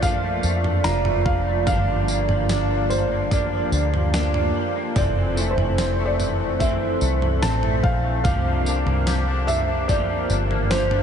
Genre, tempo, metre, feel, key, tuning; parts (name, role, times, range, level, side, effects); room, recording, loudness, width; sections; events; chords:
dream pop; 73 BPM; 4/4; straight; G dorian; A4 = 440 Hz
felt-muted upright piano; melody; 0.0-11.0 s; C5 to Bb5; -27 LUFS; equal; diffuse ambient delay
electric guitar through a small old amp; accompaniment; 0.0-11.0 s; G2 to Bb4; -30 LUFS; right 3 dB; tremolo, lush chorus
mellow brass ensemble; sustained chords; 0.0-11.0 s; Bb2 to D5; -28 LUFS; right 3 dB; stereo widening
electric guitar at the edge of break-up; arpeggios; 0.0-11.0 s; E3 to G4; -28 LUFS; left 4 dB; analog chorus, diffuse ambient delay
vintage muted picked electric bass; bass; 0.0-11.0 s; F1 to F2; -24 LUFS; equal
crisp 8-bit digital drum machine; drums; 0.0-11.0 s; kick drum, snare drum, tambourine, toms; -26 LUFS; right 1 dB
moderate huge ambient reverb, RT60 8.7 s; dreamy mix soaked in reverb, nothing above 11.0 kHz; -19 LUFS; side -8 dB against mid
0.0-11.0 A section
0.0 Bbmaj7; 1.7 Gm7; 5.0 Fmaj7; 8.2 C9sus4